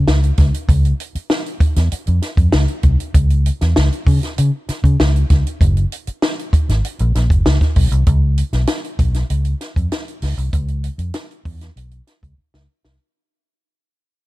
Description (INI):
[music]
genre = funk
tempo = 97 BPM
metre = 4/4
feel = straight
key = unclear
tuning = A4 = 444 Hz
[part]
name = vintage muted fingered electric bass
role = bass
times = 0.0-13.0 s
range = Gb1 to Db3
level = -15 LUFS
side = equal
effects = none
[part]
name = compact cocktail drum kit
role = drums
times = 0.1-13.0 s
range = hi-hat, kick drum, snare drum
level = -17 LUFS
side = equal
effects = none
[sound]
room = little or no reverb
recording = none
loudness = -14 LUFS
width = side -18 dB against mid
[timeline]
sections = 0.0-8.1 A section; 8.1-13.0 B section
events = fade-out 8.1-13.0; drum fill 12.4-13.0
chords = none